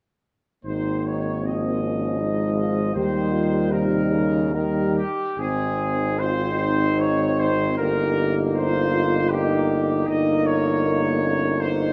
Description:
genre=classical, hymn-like piece for brass band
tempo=68-80 BPM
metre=3/4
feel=rubato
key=Ab major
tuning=A4 = 440 Hz
part: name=warm trombone section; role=accompaniment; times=0.6-11.9 s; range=G3 to Eb4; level=-29 LUFS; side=equal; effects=none
part: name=clear trumpet section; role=melody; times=0.7-11.9 s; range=G4 to Eb5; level=-29 LUFS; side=equal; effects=none
part: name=warm French horn section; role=second line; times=0.7-11.9 s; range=Bb3 to G4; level=-29 LUFS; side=equal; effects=none
part: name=brilliant trombone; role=accompaniment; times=0.7-11.9 s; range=C3 to C4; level=-31 LUFS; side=equal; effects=none
part: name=warm tuba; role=bass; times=0.7-11.9 s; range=G1 to Eb2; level=-28 LUFS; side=equal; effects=none
room=moderate scoring stage reverb, RT60 1.7 s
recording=none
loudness=-22 LUFS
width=mono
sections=0.6-5.4 A section; 5.4-11.9 B section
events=none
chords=0.6 Ab; 2.9 Eb7; 5.4 Ab; 7.8 Eb/G

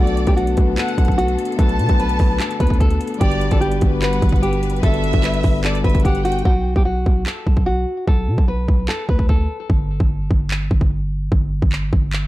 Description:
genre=hip hop, trap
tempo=148 BPM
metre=4/4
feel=half-time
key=B minor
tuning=A4 = 438 Hz
part: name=nylon-string guitar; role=melody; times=0.0-9.7 s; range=F#4 to B4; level=-24 LUFS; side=equal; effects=low-pass filter, ping-pong delay
part: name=warm symphonic violin section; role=second line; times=0.0-6.4 s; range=D5 to A5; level=-27 LUFS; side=equal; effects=ping-pong delay
part: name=mellow tine electric piano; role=accompaniment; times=0.0-6.5 s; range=G3 to B4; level=-24 LUFS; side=left 6 dB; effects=low-pass filter
part: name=warm symphonic string section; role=sustained chords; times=0.0-6.4 s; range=D3 to B4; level=-30 LUFS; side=left 1 dB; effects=none
part: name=growling 808-style bass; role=bass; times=0.0-12.3 s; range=G1 to B2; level=-20 LUFS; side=equal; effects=none
part: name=trap drum kit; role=drums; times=0.1-12.2 s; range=handclaps, hi-hat, kick drum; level=-18 LUFS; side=equal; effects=none
room=studio reverb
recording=dark, warm production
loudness=-15 LUFS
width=side -16 dB against mid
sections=0.0-6.5 A section; 6.5-12.3 B section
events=hi-hats muted 6.5-12.3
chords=0.0 Bm7; 3.2 Gmaj7; 6.5 Bm7; 9.7 N.C.

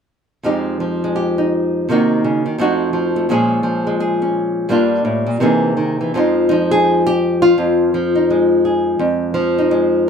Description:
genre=solo jazz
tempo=169 BPM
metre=4/4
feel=swing 63% on 8ths, rubato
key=F minor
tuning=A4 = 441 Hz
part: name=nylon-string guitar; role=solo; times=0.4-10.1 s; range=F2 to Ab4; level=-14 LUFS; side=equal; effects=none
room=moderate studio ambience, RT60 0.5 s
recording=band playing live in one room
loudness=-14 LUFS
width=side -6 dB against mid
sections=0.4-6.1 A section; 6.1-10.1 B section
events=none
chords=0.4 Fm9; 1.9 Cm7b5; 2.6 F7b9; 3.3 Bbm7; 4.7 Gm7; 5.4 C7alt; 6.1 Fm7

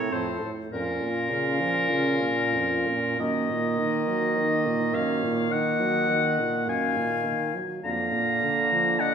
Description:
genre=classical, slow romantic movement for wind quintet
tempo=51 BPM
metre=4/4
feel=rubato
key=unclear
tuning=A4 = 439 Hz
part: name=concert flute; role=melody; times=0.0-9.1 s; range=F4 to F5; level=-33 LUFS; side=left 6 dB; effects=none
part: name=clear oboe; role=second line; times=0.0-9.1 s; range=Bb4 to Bb5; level=-26 LUFS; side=left 2 dB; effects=none
part: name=mellow clarinet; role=accompaniment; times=0.0-9.1 s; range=Bb3 to Db4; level=-31 LUFS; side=right 5 dB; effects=none
part: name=warm French horn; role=accompaniment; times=0.0-9.1 s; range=F2 to Gb3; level=-31 LUFS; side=equal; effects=none
part: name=mellow bassoon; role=bass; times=0.0-9.1 s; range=A2 to Eb3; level=-31 LUFS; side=right 4 dB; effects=none
room=wet recital hall reverb, RT60 1.6 s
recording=recorded in a church or concert hall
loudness=-23 LUFS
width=side -7 dB against mid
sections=0.0-9.1 A section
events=none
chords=0.0 F; 0.7 Bbm/F; 3.2 Ebm/Gb; 7.8 Bb/F

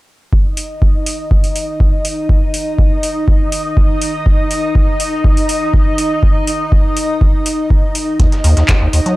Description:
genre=acid house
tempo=122 BPM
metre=4/4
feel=straight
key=unclear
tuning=A4 = 438 Hz
part: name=string machine, full ensemble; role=sustained chords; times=0.3-9.2 s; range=Eb4 to Eb5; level=-18 LUFS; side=equal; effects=ensemble chorus, sidechain pumping
part: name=electronic kick drum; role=drums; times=0.3-8.8 s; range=none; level=-12 LUFS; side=equal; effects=none
part: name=booming analog drum machine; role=drums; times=0.6-9.2 s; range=handclaps, hi-hat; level=-20 LUFS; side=equal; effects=none
part: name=acid bass, square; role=riff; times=8.2-9.2 s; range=Eb2 to Gb3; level=-12 LUFS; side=equal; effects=overdrive, lush chorus
part: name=dusty soul sampler-style drum kit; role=drums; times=8.2-9.2 s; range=hi-hat, snare drum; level=-30 LUFS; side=equal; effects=overdrive, sidechain pumping on hats, high-pass filter on hats, high-pass filter on snare, high-pass filter on room
room=little or no reverb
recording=dry, gritty hardware recording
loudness=-12 LUFS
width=side -18 dB against mid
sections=0.3-9.2 A section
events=none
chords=none

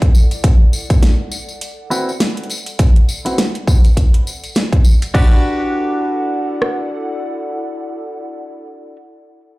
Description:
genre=glitch hop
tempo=102 BPM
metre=4/4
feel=swing 57% on 16ths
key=E minor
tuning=A4 = 440 Hz
part: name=dubstep drum kit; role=drums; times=0.0-6.8 s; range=kick drum, rim click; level=-10 LUFS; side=equal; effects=small room ambience
part: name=dubstep drum kit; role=drums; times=0.0-5.3 s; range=crash cymbal, hi-hat, snare drum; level=-20 LUFS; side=equal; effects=small room ambience
part: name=airy breathy pad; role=texture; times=0.0-8.3 s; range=E4 to F#5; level=-29 LUFS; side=left 1 dB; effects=chorus, sidechain pumping
part: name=tambourine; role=percussion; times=0.1-5.1 s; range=none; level=-28 LUFS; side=left 2 dB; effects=none
part: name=clean electric guitar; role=stabs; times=1.9-9.0 s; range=C4 to B4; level=-21 LUFS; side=equal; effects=sidechain pumping, low-pass filter, tape echo
room=digital ambience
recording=played on a big sound system in a bare room, large studio reverb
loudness=-13 LUFS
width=side -20 dB against mid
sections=0.0-5.1 A section; 5.1-7.5 B section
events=fade-out on analog synth pad 0.0-5.1; filter sweep on clean electric guitar 0.0-5.1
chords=0.4 Dadd9; 5.1 Em9

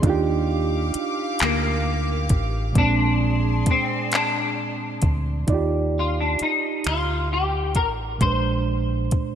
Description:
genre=slow six-eight R&B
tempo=44 BPM (dotted quarters)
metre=6/8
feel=straight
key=Eb major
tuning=A4 = 439 Hz
part: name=reed electric piano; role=accompaniment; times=0.0-9.3 s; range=Bb2 to D5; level=-26 LUFS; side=right 5 dB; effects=none
part: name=warm studio string section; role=sustained chords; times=0.0-5.5 s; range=G4 to D6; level=-32 LUFS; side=left 1 dB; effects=none
part: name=deep dub fingered electric bass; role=bass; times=0.0-9.2 s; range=A1 to Eb2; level=-24 LUFS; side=equal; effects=none
part: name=smooth R&B drum kit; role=drums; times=0.0-9.3 s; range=finger snaps, handclaps, hi-hat, kick drum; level=-23 LUFS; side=equal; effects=gated reverb
part: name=semi-hollow electric guitar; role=melody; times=1.4-8.6 s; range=Bb3 to C5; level=-25 LUFS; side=left 3 dB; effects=ensemble chorus
room=moderate lush hall reverb, RT60 2.8 s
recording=bright 1980s-style digital production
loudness=-20 LUFS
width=side -9 dB against mid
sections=0.0-5.5 A section; 5.5-9.3 B section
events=clean electric guitar solo 5.5-9.3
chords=0.0 Ebmaj9; 2.8 Bb9; 5.5 Ebmaj9; 8.2 Bb9

